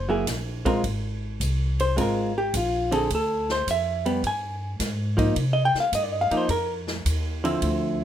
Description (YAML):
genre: jazz, small-group swing and bop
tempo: 106 BPM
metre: 4/4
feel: swing 68% on 8ths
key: C minor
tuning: A4 = 442 Hz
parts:
  - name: vintage hollow-body jazz guitar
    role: accompaniment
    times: 0.0-8.0 s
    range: D3 to Ab5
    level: -23 LUFS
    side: equal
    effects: plate reverb
  - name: upright bass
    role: bass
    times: 0.0-8.0 s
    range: F#1 to C3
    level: -27 LUFS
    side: equal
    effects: none
  - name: swinging big-band drum kit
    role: drums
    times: 0.3-7.8 s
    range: hi-hat, kick drum, ride cymbal, snare drum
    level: -33 LUFS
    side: right 1 dB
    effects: none
room: light reverb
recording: rough home demo mix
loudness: -22 LUFS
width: side -10 dB against mid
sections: 0.0-8.0 A section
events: none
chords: 0.0 F#9; 0.8 Ab69; 3.1 Dm; 4.2 Fm11/G; 5.4 Cm11